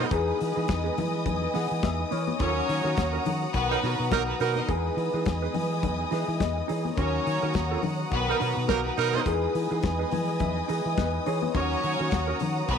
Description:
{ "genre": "disco", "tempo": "105 BPM", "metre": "4/4", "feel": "swing 56% on 16ths", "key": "unclear", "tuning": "A4 = 440 Hz", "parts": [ { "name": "clear studio violin section", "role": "second line", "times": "0.0-12.8 s", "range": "A#3 to D#5", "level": "-32 LUFS", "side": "equal", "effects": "none" }, { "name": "barky tine electric piano", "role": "accompaniment", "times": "0.0-12.8 s", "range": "D#3 to G#5", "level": "-32 LUFS", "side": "left 12 dB", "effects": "overdrive, phaser" }, { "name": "mellow electric guitar", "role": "accompaniment", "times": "0.0-12.6 s", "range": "B3 to C#5", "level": "-36 LUFS", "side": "right 12 dB", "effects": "none" }, { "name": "warm studio string section", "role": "sustained chords", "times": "0.0-12.8 s", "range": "B4 to D#6", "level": "-31 LUFS", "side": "right 2 dB", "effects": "none" }, { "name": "warm horn section", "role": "stabs", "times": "0.0-0.1, 3.7-4.6, 8.3-9.2 s", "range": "F#3 to A#4", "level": "-29 LUFS", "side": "right 11 dB", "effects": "slapback echo" }, { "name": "fingered electric bass", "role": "bass", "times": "0.0-12.8 s", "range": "B1 to E3", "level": "-30 LUFS", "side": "right 1 dB", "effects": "none" }, { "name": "damped 70s drum kit", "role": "drums", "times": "0.1-12.8 s", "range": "hi-hat, kick drum, snare drum", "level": "-31 LUFS", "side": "left 2 dB", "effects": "none" }, { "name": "congas", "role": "percussion", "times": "0.1-12.8 s", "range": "none", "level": "-35 LUFS", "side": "left 10 dB", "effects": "none" } ], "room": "light reverb, studio ambience", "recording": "1960s-style stereo with parts hard left and right", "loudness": "-24 LUFS", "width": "side -7 dB against mid", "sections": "0.0-12.8 A section", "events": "tine electric piano fill 1.3-2.4, 5.8-7.0, 9.8-11.5", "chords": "0.1 Emaj7; 2.4 D#m7; 3.5 Bmaj7; 4.7 Emaj7; 7.0 D#m7; 8.1 Bmaj7; 9.3 Emaj7; 11.5 D#m7", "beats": "| 0.11 0.69 1.26 1.83 | 2.40 2.98 3.55 4.12 | 4.69 5.27 5.84 6.41 | 6.98 7.55 8.12 8.70 | 9.27 9.84 10.41 10.98 | 11.55 12.12 12.69" }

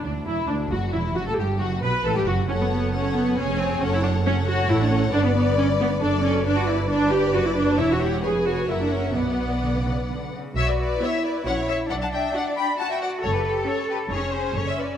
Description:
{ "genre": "quick classical-period movement for string orchestra", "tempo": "135 BPM", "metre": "3/4", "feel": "rubato", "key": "B minor", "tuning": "A4 = 439 Hz", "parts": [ { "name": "rich studio violin section", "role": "melody", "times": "0.0-15.0 s", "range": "D4 to B5", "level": "-30 LUFS", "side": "left 6 dB", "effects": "none" }, { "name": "rich studio violin section", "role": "second line", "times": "0.0-14.9 s", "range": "D4 to G5", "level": "-28 LUFS", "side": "left 3 dB", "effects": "none" }, { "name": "rich studio viola section", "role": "accompaniment", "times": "0.0-14.4 s", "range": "B3 to B4", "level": "-24 LUFS", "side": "right 1 dB", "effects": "none" }, { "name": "warm studio double bass section", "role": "bass", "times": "0.0-14.9 s", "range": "E1 to D2", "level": "-28 LUFS", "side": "right 2 dB", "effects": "none" }, { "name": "warm studio cello section", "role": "bass", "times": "0.1-15.0 s", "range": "D2 to A4", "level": "-28 LUFS", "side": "right 2 dB", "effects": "none" } ], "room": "moderate scoring stage reverb, RT60 1.9 s", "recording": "none", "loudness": "-20 LUFS", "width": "side -9 dB against mid", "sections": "0.0-10.6 A section; 10.6-15.0 A section", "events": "none", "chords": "0.0 Dsus2; 0.7 Esus2; 1.2 B5/F#; 2.5 F#m; 3.4 C#/E#; 3.8 F#m; 5.1 G; 6.0 D/F#; 6.5 G; 7.8 C#dim/E; 8.2 C#7/E#; 8.7 F#7; 9.2 Bm; 10.6 B5; 11.5 F#/A#; 11.9 Bm; 13.2 F#m; 14.1 C#/E#", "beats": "0.27 0.71 | 1.16 1.60 2.05 | 2.49 2.93 3.38 | 3.82 4.25 4.70 | 5.13 5.57 6.01 | 6.46 6.90 7.34 | 7.79 8.23 8.69 | 9.15 9.62 10.09 | 10.56 11.01 11.45 | 11.90 12.34 12.78 | 13.23 13.66 14.10 | 14.54" }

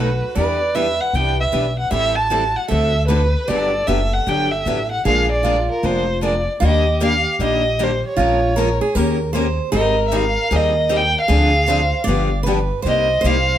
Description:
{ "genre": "acoustic string swing (jazz manouche)", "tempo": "154 BPM", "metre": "4/4", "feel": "swing 62% on 8ths", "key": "Eb major from 6.6 s", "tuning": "A4 = 439 Hz", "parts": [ { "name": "dark violin", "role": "melody", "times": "0.0-13.6 s", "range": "Bb4 to A5", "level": "-19 LUFS", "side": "right 1 dB", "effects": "plate reverb" }, { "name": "picked steel-string acoustic guitar", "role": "second line", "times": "0.0-13.6 s", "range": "F4 to D5", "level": "-24 LUFS", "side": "right 3 dB", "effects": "none" }, { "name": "picked steel-string acoustic guitar", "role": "accompaniment", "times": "0.0-13.4 s", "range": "C3 to Bb4", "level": "-24 LUFS", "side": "left 5 dB", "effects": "none" }, { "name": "picked steel-string acoustic guitar", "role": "accompaniment", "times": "0.0-13.4 s", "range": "C3 to B4", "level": "-27 LUFS", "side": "right 5 dB", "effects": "none" }, { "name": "upright bass", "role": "bass", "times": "0.0-13.6 s", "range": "F1 to E2", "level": "-21 LUFS", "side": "equal", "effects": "none" } ], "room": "moderate studio reverb, RT60 0.8 s", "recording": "none", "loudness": "-15 LUFS", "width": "side -11 dB against mid", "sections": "0.0-6.6 A section; 6.6-13.6 B section", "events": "none", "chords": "0.4 Em7; 1.9 Am7; 2.7 D7; 3.5 Gmaj7; 5.1 Bb7; 6.6 Ebmaj7; 8.2 Bbm7; 9.0 Eb7; 9.7 Abmaj7; 11.3 Dm7b5; 12.1 G7; 12.9 Cm7", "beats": "| 0.36 0.76 1.15 1.54 | 1.93 2.32 2.71 3.10 | 3.49 3.88 4.27 4.66 | 5.05 5.44 5.83 6.22 | 6.61 7.00 7.39 7.78 | 8.17 8.56 8.95 9.34 | 9.73 10.12 10.51 10.90 | 11.29 11.68 12.07 12.46 | 12.85 13.24" }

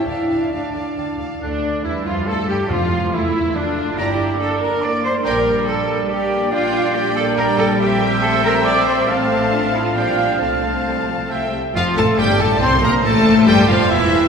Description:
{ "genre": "quick classical-period movement for symphony orchestra", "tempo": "140 BPM", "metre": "3/4", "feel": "straight", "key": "D minor, F major from 6.5 s", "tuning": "A4 = 442 Hz", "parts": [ { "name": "rich studio violin section", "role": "melody", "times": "0.0-14.3 s", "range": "D4 to C6", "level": "-25 LUFS", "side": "left 2 dB", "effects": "none" }, { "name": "clear oboe", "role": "second line", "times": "0.0-14.3 s", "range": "D4 to Bb5", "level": "-27 LUFS", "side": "right 3 dB", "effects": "none" }, { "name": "mellow hollow concert flute", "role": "second line", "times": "0.0-14.3 s", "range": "C5 to D6", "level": "-27 LUFS", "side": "equal", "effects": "none" }, { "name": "rich studio violin section", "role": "second line", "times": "0.0-14.3 s", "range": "D4 to G5", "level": "-29 LUFS", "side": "left 2 dB", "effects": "none" }, { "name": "warm clarinet", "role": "second line", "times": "0.0-14.3 s", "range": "D4 to F5", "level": "-27 LUFS", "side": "equal", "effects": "none" }, { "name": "warm studio viola section", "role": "accompaniment", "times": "0.0-14.3 s", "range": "E3 to F4", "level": "-22 LUFS", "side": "left 1 dB", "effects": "none" }, { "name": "warm French horn section", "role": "sustained chords", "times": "0.0-14.2 s", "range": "D3 to E4", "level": "-24 LUFS", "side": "left 2 dB", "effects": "none" }, { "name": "rich studio cello section", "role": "bass", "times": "0.1-14.3 s", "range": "E2 to D5", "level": "-23 LUFS", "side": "right 1 dB", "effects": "none" }, { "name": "warm studio double bass section", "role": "bass", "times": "0.1-14.3 s", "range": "E1 to A2", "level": "-25 LUFS", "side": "right 3 dB", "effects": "none" }, { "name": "warm trumpet section", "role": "stabs", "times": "1.4-11.5 s", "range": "D4 to F5", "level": "-25 LUFS", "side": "right 2 dB", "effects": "none" }, { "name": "timpani", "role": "percussion", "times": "2.7-3.3 s", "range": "F2", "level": "-28 LUFS", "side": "equal", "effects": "none" } ], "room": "wet church reverb, RT60 2.6 s", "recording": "minimal, uncompressed stereo recording", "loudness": "-15 LUFS", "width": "side -6 dB against mid", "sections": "0.0-1.4 A section; 1.4-11.8 B section; 11.8-14.3 C section", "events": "none", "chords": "0.1 Dm; 4.0 Gm; 5.2 Gm/Bb; 6.5 Gm7/Bb; 7.8 C7/Bb; 9.1 F/A; 9.9 Gm7/Bb; 10.4 F/C; 11.3 C; 11.8 F; 13.0 C", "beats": "| 0.06 0.51 0.96 | 1.40 1.84 2.27 | 2.70 3.13 3.55 | 3.98 4.40 4.82 | 5.25 5.67 6.09 | 6.52 6.94 7.37 | 7.79 8.22 8.65 | 9.08 9.51 9.95 | 10.40 10.85 11.30 | 11.75 12.19 12.62 | 13.04 13.47 13.89" }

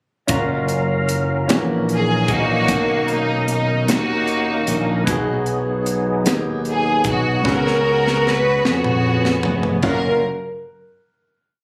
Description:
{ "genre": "slow gospel", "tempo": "50 BPM (dotted quarters)", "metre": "6/8", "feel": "straight", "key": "F# major", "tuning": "A4 = 440 Hz", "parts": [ { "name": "clear concert grand piano", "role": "accompaniment", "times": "0.3-10.2 s", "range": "F#2 to A#4", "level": "-27 LUFS", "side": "equal", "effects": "none" }, { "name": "overdriven tonewheel organ", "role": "sustained chords", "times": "0.3-10.2 s", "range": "D#3 to E#5", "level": "-27 LUFS", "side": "equal", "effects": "slow rotary speaker, chorus vibrato" }, { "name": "glassy slap bass", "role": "bass", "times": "0.3-10.2 s", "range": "E#1 to E#2", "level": "-24 LUFS", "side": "equal", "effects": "none" }, { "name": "crisp fusion drum kit", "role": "drums", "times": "0.3-10.0 s", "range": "china cymbal, hi-hat, kick drum, snare drum, toms", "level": "-25 LUFS", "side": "equal", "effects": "none" }, { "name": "clear symphonic string section", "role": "melody", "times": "1.9-10.2 s", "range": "A#3 to B4", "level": "-22 LUFS", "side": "equal", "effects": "none" } ], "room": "light reverb, studio reverb", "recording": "recorded on a phone in the room, club reverb", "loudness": "-19 LUFS", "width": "mono", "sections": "0.3-9.8 A section; 9.8-11.6 final chord", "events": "drum fill 7.5-9.8", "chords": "0.3 F#maj7; 1.5 F#7/A#; 2.7 Bmaj9; 5.1 G#m7/B; 7.5 C#7sus4; 9.8 F#maj7", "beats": "| 0.30 1.49 | 2.68 3.88 | 5.07 6.26 | 7.45 8.64 | 9.83" }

